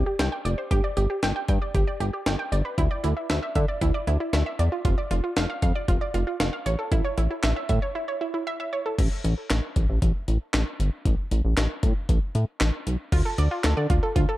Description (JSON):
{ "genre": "synth-pop", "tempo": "116 BPM", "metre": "4/4", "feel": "straight", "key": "D dorian", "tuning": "A4 = 444 Hz", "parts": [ { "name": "chorused synth bass", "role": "bass", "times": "0.0-14.3 s", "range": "F1 to D3", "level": "-23 LUFS", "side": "equal", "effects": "none" }, { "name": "analog pluck", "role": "arpeggios", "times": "0.1-8.9, 13.1-14.4 s", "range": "E4 to G5", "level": "-29 LUFS", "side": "right 2 dB", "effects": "chorus, analog delay" }, { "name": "jungle sampler-style drum kit", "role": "drums", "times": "0.2-14.3 s", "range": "crash cymbal, handclaps, hi-hat, kick drum, snare drum", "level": "-26 LUFS", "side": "equal", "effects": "none" } ], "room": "light reverb", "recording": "echo-heavy mix", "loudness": "-22 LUFS", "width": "side -16 dB against mid", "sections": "0.0-9.0 A section; 9.0-13.1 B section; 13.1-14.4 C section", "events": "break 8.0-9.0", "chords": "0.0 Csus2; 0.7 G5; 2.8 Dsus2; 4.8 Dm/F; 6.7 A; 9.0 N.C.; 13.1 Dm" }